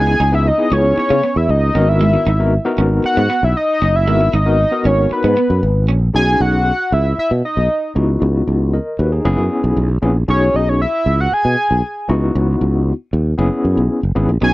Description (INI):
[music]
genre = funk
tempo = 116 BPM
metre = 4/4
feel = straight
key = B major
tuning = A4 = 439 Hz
[part]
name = fat analog lead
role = melody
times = 0.0-14.5 s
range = B4 to G#5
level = -16 LUFS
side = equal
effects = chorus, slapback echo
[part]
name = overdriven tine electric piano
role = accompaniment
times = 0.0-14.5 s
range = D#3 to D#5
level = -19 LUFS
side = left 2 dB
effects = fast tremolo
[part]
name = electric guitar at the edge of break-up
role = riff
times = 0.0-6.0, 14.4-14.5 s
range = G#3 to D#4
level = -22 LUFS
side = right 5 dB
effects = lush chorus
[part]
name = sustaining fretless electric bass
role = bass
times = 0.0-14.5 s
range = F#1 to C#3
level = -15 LUFS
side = equal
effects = none
[sound]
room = little or no reverb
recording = dry, close 1970s-style studio recording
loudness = -13 LUFS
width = side -18 dB against mid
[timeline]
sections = 0.0-6.1 A section; 6.1-14.5 B section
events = none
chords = 0.0 C#m7; 1.7 G#m7; 6.1 B69; 8.0 C#m11; 9.2 F#7sus4; 10.3 B69; 12.1 C#m11; 13.4 F#7sus4